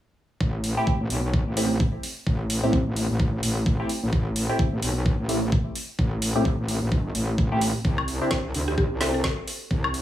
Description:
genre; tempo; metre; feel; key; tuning
bass house; 129 BPM; 4/4; swing 58% on 16ths; A minor; A4 = 443 Hz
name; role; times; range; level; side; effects
metallic wobble bass; bass; 0.4-10.0 s; G1 to D2; -26 LUFS; equal; chorus, overdrive, sidechain pumping
electronic kick drum; drums; 0.4-9.8 s; none; -24 LUFS; equal; none
garage drum kit; drums; 0.6-10.0 s; hi-hat, snare drum, woodblock; -30 LUFS; equal; none
band-passed chord stab; stabs; 0.8-9.1 s; A3 to G4; -28 LUFS; equal; phaser, sidechain pumping, digital delay
mallet-like synth pluck; melody; 8.7-9.2 s; G4 to A4; -30 LUFS; left 1 dB; chorus, digital delay
room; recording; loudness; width
digital ambience; small room ambience; -22 LUFS; side -13 dB against mid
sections
0.4-10.0 A section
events
none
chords
0.4 Am7; 7.8 Cadd9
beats
| 0.41 0.87 1.34 1.80 | 2.27 2.73 3.20 3.66 | 4.13 4.59 5.06 5.52 | 5.99 6.45 6.92 7.38 | 7.85 8.31 8.78 9.24 | 9.71

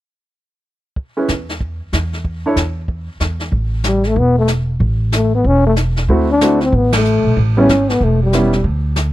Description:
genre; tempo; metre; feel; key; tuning
jazz, small-group swing and bop; 188 BPM; 4/4; swing 62% on 8ths; A mixolydian from 3.5 s; A4 = 439 Hz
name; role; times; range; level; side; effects
jazz brush drum kit; drums; 1.0-9.1 s; brushed snare drum, hi-hat, kick drum, ride cymbal, snare drum; -22 LUFS; equal; none
clear baby grand piano; accompaniment; 1.2-2.6, 6.1-8.5 s; G3 to C#5; -16 LUFS; right 2 dB; none
upright bass; bass; 1.3-9.1 s; E1 to E2; -16 LUFS; equal; none
growling trombone; melody; 3.9-8.6 s; G3 to D4; -15 LUFS; left 2 dB; none
room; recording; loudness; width
studio ambience; dry, close 1970s-style studio recording; -13 LUFS; side -15 dB against mid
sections
1.0-3.5 A section; 3.5-9.1 B section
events
band accent 6.9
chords
1.0 N.C.; 3.5 A5; 6.1 D7; 7.4 A7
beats
| 0.96 1.28 1.60 1.92 | 2.25 2.57 2.89 3.21 | 3.53 3.85 4.17 4.49 | 4.81 5.13 5.45 5.77 | 6.09 6.41 6.73 7.05 | 7.37 7.69 8.01 8.33 | 8.65 8.97

